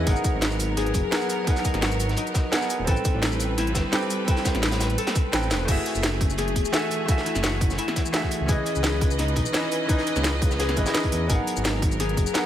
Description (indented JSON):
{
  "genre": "liquid drum and bass",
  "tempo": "171 BPM",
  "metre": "4/4",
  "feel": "straight",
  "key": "F# dorian",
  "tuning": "A4 = 438 Hz",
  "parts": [
    { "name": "bright grand piano", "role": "accompaniment", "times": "0.0-12.5 s", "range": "E3 to G#5", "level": "-30 LUFS", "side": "right 2 dB", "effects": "digital delay" },
    { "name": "clear studio string section", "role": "sustained chords", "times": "0.0-12.5 s", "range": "E3 to D#5", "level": "-32 LUFS", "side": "right 2 dB", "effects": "sidechain pumping" },
    { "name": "concert harp", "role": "arpeggios", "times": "0.0-12.5 s", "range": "D#4 to B4", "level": "-30 LUFS", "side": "left 6 dB", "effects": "dub echo" },
    { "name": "dark detuned saw bass", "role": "bass", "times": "0.0-12.3 s", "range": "D#1 to E2", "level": "-26 LUFS", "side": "equal", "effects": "tube saturation" },
    { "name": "crunchy breakbeat drum kit", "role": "drums", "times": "0.1-12.4 s", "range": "hi-hat, snare drum", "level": "-34 LUFS", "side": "equal", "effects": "high-pass filter on hats, high-pass filter on snare, high-pass filter on room" },
    { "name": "electronic kick drum", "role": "drums", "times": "0.1-12.2 s", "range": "none", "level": "-24 LUFS", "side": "equal", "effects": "none" },
    { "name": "garage drum kit", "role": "drums", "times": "0.1-12.4 s", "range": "crash cymbal, hi-hat, shaker, snare drum", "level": "-28 LUFS", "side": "equal", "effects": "none" }
  ],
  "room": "light reverb, studio reverb",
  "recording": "none",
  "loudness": "-21 LUFS",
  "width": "side -11 dB against mid",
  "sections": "0.0-5.7 A section; 5.7-12.5 A section",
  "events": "drop 0.0-5.7, 5.7-12.5; drum fill 5.5",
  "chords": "0.1 G#m9; 2.9 Am9; 5.7 F#m9; 8.5 C#m9; 11.3 G#m9",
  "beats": "| 0.07 0.42 0.77 1.12 | 1.47 1.82 2.17 2.52 | 2.87 3.23 3.58 3.93 | 4.28 4.63 4.98 5.33 | 5.68 6.03 6.38 6.73 | 7.08 7.44 7.79 8.14 | 8.49 8.84 9.19 9.54 | 9.89 10.24 10.59 10.95 | 11.29 11.65 12.00 12.35"
}